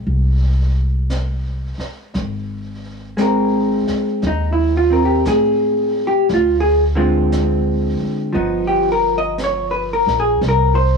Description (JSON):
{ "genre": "jazz ballad", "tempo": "58 BPM", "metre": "4/4", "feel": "swing 66% on 8ths", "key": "Ab major", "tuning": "A4 = 440 Hz", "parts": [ { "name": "vintage hollow-body jazz guitar", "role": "accompaniment", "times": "0.0-11.0 s", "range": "D3 to Ab5", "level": "-16 LUFS", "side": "equal", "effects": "cassette tape" }, { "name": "upright bass", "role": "bass", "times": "0.0-11.0 s", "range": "G1 to A2", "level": "-20 LUFS", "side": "equal", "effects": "none" }, { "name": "jazz brush drum kit", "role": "drums", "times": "0.1-11.0 s", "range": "brushed snare drum, hi-hat, snare drum", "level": "-33 LUFS", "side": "right 1 dB", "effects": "none" } ], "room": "studio reverb", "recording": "home recording on cassette", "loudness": "-15 LUFS", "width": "side -5 dB against mid", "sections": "0.0-2.1 A section; 2.1-11.0 B section", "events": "none", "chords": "0.0 Abadd9; 6.3 Dm7b5; 8.4 G7alt; 10.4 C7(no3)", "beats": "0.06 1.10 | 2.14 3.18 4.21 5.25 | 6.28 7.32 8.35 9.39 | 10.42" }